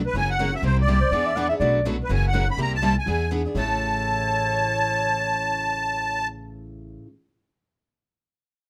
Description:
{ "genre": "acoustic string swing (jazz manouche)", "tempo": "246 BPM", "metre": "4/4", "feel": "swing 56% on 8ths", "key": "A major", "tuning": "A4 = 440 Hz", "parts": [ { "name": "upright bass", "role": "bass", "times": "0.0-7.0 s", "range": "F#1 to E2", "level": "-29 LUFS", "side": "equal", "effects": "none" }, { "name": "musette accordion", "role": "melody", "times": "0.1-6.3 s", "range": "B4 to B5", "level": "-26 LUFS", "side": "equal", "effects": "none" }, { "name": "picked steel-string acoustic guitar", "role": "accompaniment", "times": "0.1-7.1 s", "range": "A2 to G#4", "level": "-33 LUFS", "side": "equal", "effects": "none" }, { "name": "picked steel-string acoustic guitar", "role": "accompaniment", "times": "0.1-7.1 s", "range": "A2 to B4", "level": "-35 LUFS", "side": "equal", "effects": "none" }, { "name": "mellow clarinet", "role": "second line", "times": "1.0-6.3 s", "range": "C5 to F#5", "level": "-29 LUFS", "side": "equal", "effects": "none" } ], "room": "light reverb", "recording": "none", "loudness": "-23 LUFS", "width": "mono", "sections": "0.0-3.6 A section; 3.6-5.5 B section", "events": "none", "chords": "0.1 F#7; 0.6 C9; 1.1 E7; 1.6 Bm7; 2.1 F#7; 2.6 C6; 3.1 E7; 3.6 A" }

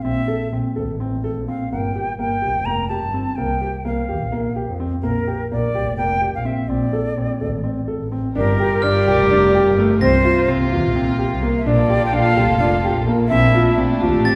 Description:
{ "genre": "contemporary instrumental, chamber music in an uneven meter", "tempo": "253 BPM (eighths)", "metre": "7/8", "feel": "straight", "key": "G dorian", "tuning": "A4 = 441 Hz", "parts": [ { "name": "jazz flute", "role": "melody", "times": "0.0-13.8 s", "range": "Bb4 to Bb5", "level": "-24 LUFS", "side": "equal", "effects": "none" }, { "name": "clear concert grand piano", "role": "arpeggios", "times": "0.0-14.4 s", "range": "A3 to A4", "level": "-25 LUFS", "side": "equal", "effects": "none" }, { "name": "warm double bass", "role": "bass", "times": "0.0-14.4 s", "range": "F1 to F2", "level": "-24 LUFS", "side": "equal", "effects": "none" }, { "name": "rich chamber string section", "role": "sustained chords", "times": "8.3-14.4 s", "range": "C3 to Bb4", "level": "-27 LUFS", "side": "equal", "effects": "none" }, { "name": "warm cello", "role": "second line", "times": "8.4-14.4 s", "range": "E4 to G4", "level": "-24 LUFS", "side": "equal", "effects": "none" }, { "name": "glockenspiel with brass mallets", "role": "texture", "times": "8.8-10.9, 14.3-14.4 s", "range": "F6 to Bb6", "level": "-30 LUFS", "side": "equal", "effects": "none" } ], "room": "wet recital hall reverb, RT60 1.4 s", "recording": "heard from further back in the room", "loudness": "-19 LUFS", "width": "mono", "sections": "0.0-8.4 A section; 8.4-14.4 A section", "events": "none", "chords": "0.0 Bbmaj7(b5, no3); 1.7 Gm7; 3.4 C7sus4; 5.0 Gm7/Bb; 6.7 Bbmaj9; 8.4 Gm7; 10.0 C7sus4; 11.7 Gm7/Bb; 13.3 Bbmaj9#11" }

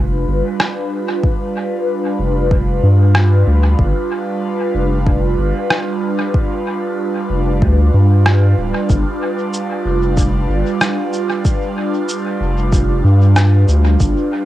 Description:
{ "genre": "ambient dub", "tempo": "94 BPM", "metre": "4/4", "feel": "straight", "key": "G mixolydian", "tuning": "A4 = 442 Hz", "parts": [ { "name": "airy breathy pad", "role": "sustained chords", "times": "0.0-14.4 s", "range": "G3 to B4", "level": "-19 LUFS", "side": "right 1 dB", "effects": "chorus, phaser, cassette tape" }, { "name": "round analog bass", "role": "bass", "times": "0.0-14.1 s", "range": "D1 to G2", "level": "-13 LUFS", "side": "equal", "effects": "tube saturation" }, { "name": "electronic rim click and shaker", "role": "drums", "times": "0.6-14.1 s", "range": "none", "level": "-21 LUFS", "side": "equal", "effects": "cassette tape, dub echo" }, { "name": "electronic kick drum", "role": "drums", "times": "1.2-14.1 s", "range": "none", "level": "-16 LUFS", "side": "equal", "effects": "cassette tape" }, { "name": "vibraphone with soft mallets", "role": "arpeggios", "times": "14.0-14.4 s", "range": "D4", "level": "-19 LUFS", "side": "left 2 dB", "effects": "cassette tape" } ], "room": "little or no reverb", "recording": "home recording on cassette", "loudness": "-13 LUFS", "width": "side -14 dB against mid", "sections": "0.0-14.4 A section", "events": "none", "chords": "0.0 G7" }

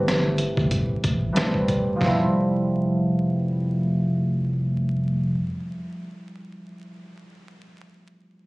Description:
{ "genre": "hip hop, boom-bap hip-hop", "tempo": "93 BPM", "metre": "4/4", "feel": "swing 54% on 16ths", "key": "F major", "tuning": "A4 = 440 Hz", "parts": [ { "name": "concert harp", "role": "accompaniment", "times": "0.0-6.0 s", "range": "E3 to G4", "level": "-24 LUFS", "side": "equal", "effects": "cassette tape, high-pass filter, low-pass filter" }, { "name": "sub bass with octave", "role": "bass", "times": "0.0-5.3 s", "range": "F1 to A1", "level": "-26 LUFS", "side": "equal", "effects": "none" }, { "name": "trip hop sampler-style drum kit", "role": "drums", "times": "0.1-2.2 s", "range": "hi-hat, kick drum, rim click, snare drum", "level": "-24 LUFS", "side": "equal", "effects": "none" } ], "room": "moderate studio reverb, RT60 0.6 s", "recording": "recorded on a phone in the room, club reverb, vinyl crackle", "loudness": "-21 LUFS", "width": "side -23 dB against mid", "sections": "0.0-2.0 A section; 2.0-4.6 B section", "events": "filter sweep on harp 0.0-2.0", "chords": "0.0 Am7; 2.0 Fmaj9" }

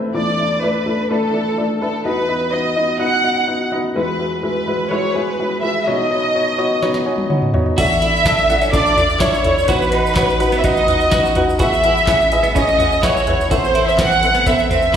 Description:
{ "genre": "piano-driven pop", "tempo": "126 BPM", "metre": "4/4", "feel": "straight", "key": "E major", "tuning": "A4 = 442 Hz", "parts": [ { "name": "warm upright piano", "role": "accompaniment", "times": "0.0-15.0 s", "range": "B1 to G#5", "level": "-20 LUFS", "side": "left 1 dB", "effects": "slapback echo" }, { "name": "warm studio violin section", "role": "melody", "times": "0.2-14.9 s", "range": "A4 to F#5", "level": "-17 LUFS", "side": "equal", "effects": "slapback echo" }, { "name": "booming analog drum machine", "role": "drums", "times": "6.8-15.0 s", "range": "crash cymbal, handclaps, hi-hat, kick drum, snare drum, toms", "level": "-20 LUFS", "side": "equal", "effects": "none" }, { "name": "twelve-string electric guitar", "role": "riff", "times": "7.8-15.0 s", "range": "B3 to F#4", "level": "-23 LUFS", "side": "right 5 dB", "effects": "slapback echo" }, { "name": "tube shaker", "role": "percussion", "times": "7.8-15.0 s", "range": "none", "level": "-38 LUFS", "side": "left 2 dB", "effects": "none" } ], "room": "moderate lush hall reverb, RT60 2.1 s", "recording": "live gig heard through the venue's PA, recital hall reverb", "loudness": "-14 LUFS", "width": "side -8 dB against mid", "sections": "0.0-7.8 A section; 7.8-15.0 B section", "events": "upright piano fill 6.8-7.8; drum fill 6.8-7.8", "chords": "0.1 Dsus2/E; 2.0 B/E; 4.0 Eadd9; 5.9 Badd9; 7.8 Dsus2/E; 9.7 B/E; 11.6 Eadd9; 13.5 Amadd9/E" }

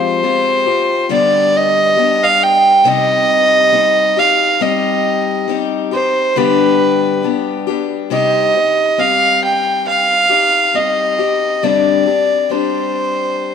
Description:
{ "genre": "acoustic folk duo or small band", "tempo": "68 BPM", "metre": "4/4", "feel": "straight", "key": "C minor", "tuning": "A4 = 440 Hz", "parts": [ { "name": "dark fiddle", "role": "melody", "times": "0.0-13.5 s", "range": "B4 to G5", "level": "-12 LUFS", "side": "right 2 dB", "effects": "none" }, { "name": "picked steel-string acoustic guitar", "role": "accompaniment", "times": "0.0-13.5 s", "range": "G2 to G4", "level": "-18 LUFS", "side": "left 10 dB", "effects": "none" } ], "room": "wet plate reverb, RT60 2.4 s", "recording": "1960s-style stereo", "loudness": "-11 LUFS", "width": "side -7 dB against mid", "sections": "0.0-8.1 A section; 8.1-13.5 B section", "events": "none", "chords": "0.0 Fmadd9; 1.1 G; 2.9 Cm; 4.6 Cm/G; 6.4 G; 8.1 Cm; 11.6 Gsus4" }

